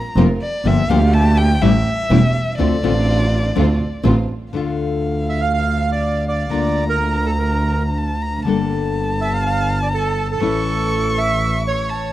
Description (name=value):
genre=tango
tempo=123 BPM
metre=4/4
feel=rubato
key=D minor, D harmonic minor from 4.5 s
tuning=A4 = 441 Hz
part: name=warm violin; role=second line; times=0.0-12.1 s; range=D5 to C#6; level=-24 LUFS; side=left 1 dB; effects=none
part: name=nylon-string guitar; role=accompaniment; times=0.2-12.1 s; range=D3 to A4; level=-22 LUFS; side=left 6 dB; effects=none
part: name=warm symphonic string section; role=stabs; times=0.2-4.3 s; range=A3 to Bb4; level=-25 LUFS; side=right 4 dB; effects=none
part: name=clear double bass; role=bass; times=0.2-12.1 s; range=E1 to D2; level=-18 LUFS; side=right 1 dB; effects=none
part: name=bandoneon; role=melody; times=5.3-12.1 s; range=A4 to F5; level=-22 LUFS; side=right 4 dB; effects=none
room=studio ambience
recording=dry, close 1970s-style studio recording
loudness=-15 LUFS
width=side -14 dB against mid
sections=0.0-4.5 A section; 4.5-12.1 B section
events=violin solo 0.0-4.5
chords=0.0 Bbsus2; 0.7 Gm7; 1.6 A7; 2.6 Dm7; 4.5 Dm; 6.5 Bb/D; 8.5 Gmadd9; 10.4 A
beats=0.17 | 0.65 1.13 1.62 2.10 | 2.58 3.07 3.56 4.05 | 4.54 5.03 5.52 6.01 | 6.50 6.99 7.48 7.97 | 8.46 8.95 9.44 9.93 | 10.41 10.90 11.40 11.89